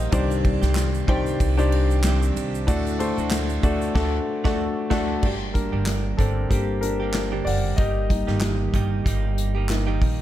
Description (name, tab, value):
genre	piano-driven pop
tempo	94 BPM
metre	4/4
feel	swing 56% on 16ths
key	G harmonic minor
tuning	A4 = 440 Hz
part	warm grand piano	accompaniment	0.0-10.2 s	G2 to C6	-26 LUFS	left 3 dB	none
part	direct-recorded clean electric guitar	riff	0.0-10.2 s	G2 to A4	-30 LUFS	right 9 dB	wide subtle chorus
part	upright bass	bass	0.0-10.2 s	F#1 to D2	-24 LUFS	equal	none
part	unplugged drum kit	drums	0.1-10.2 s	crash cymbal, handclaps, hi-hat, kick drum, ride cymbal, snare drum	-26 LUFS	equal	none
part	tube shaker	percussion	0.1-3.9 s	none	-41 LUFS	right 12 dB	none
room	studio ambience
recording	none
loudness	-20 LUFS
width	side -12 dB against mid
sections	0.0-5.2 A section; 5.2-10.2 B section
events	band accent 4.0-5.2; grand piano solo 5.2-10.2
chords	0.1 Cmadd9; 2.7 D; 5.2 Gm; 7.8 Eb/G